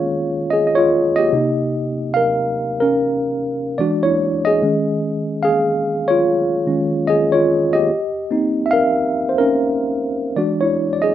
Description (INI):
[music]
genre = R&B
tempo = 73 BPM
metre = 4/4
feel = swing 61% on 16ths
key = unclear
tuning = A4 = 440 Hz
[part]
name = mellow tine electric piano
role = solo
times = 0.0-11.1 s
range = C3 to F5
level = -16 LUFS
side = equal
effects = medium stereo tremolo
[sound]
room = wet studio reverb, RT60 0.6 s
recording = rough home demo mix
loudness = -15 LUFS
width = side -11 dB against mid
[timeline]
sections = 0.0-11.1 A section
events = tine electric piano solo 0.0-11.1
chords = 0.0 Eb9sus4; 1.3 Cm7; 3.8 E9; 4.6 Eb9sus4; 7.9 Cm7; 10.4 E9